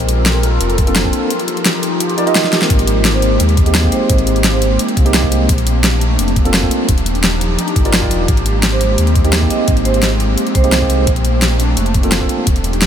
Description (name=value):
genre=liquid drum and bass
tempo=172 BPM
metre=4/4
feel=straight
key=Ab lydian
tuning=A4 = 443 Hz
part: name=airy breathy pad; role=sustained chords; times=0.0-12.9 s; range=F3 to Bb4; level=-20 LUFS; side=left 1 dB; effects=chorus, sidechain pumping
part: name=sub bass with octave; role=bass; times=0.0-12.9 s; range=Eb1 to Eb2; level=-16 LUFS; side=equal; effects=none
part: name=pop drum kit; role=drums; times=0.0-12.9 s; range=hi-hat, snare drum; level=-17 LUFS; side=left 1 dB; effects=none
part: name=electronic kick drum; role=drums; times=0.8-12.5 s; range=none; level=-16 LUFS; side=equal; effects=none
part: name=tine electric piano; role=accompaniment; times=0.9-12.5 s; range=Ab3 to Eb5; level=-20 LUFS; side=right 1 dB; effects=wide subtle chorus, ping-pong delay
part: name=vibraphone with medium mallets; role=melody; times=3.1-4.7, 8.7-11.0 s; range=C5 to Eb5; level=-24 LUFS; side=right 5 dB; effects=ping-pong delay
room=moderate huge ambient reverb, RT60 8.1 s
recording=dreamy mix soaked in reverb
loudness=-11 LUFS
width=side -9 dB against mid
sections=0.0-12.9 A section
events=drum fill 2.4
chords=0.0 Bbmaj9; 1.3 Ebadd9; 2.7 Abmaj9; 5.5 Bbmaj9; 6.9 Ebmaj9; 8.3 Abmaj9; 11.1 Bbmaj9